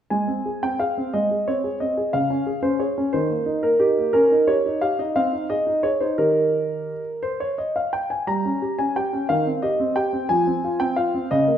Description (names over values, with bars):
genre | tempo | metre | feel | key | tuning
classical-period piano sonatina | 59 BPM (dotted quarters) | 6/8 | straight | Ab major | A4 = 438 Hz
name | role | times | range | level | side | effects
clear concert grand piano | solo | 0.1-11.6 s | Db3 to Bb5 | -20 LUFS | equal | none
room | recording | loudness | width
wet recital hall reverb, RT60 1.5 s | minimal, uncompressed stereo recording | -20 LUFS | side -9 dB against mid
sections
0.1-11.6 A section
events
none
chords
0.1 Ab; 2.1 Db; 3.1 Eb5; 4.1 Eb7/Db; 5.2 Ab/C; 6.2 Eb; 8.3 Gdim; 9.3 Cm/Eb; 10.3 Fm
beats
| 0.11 1.13 | 2.13 3.14 | 4.14 5.17 | 6.19 7.23 | 8.26 9.29 | 10.30 11.31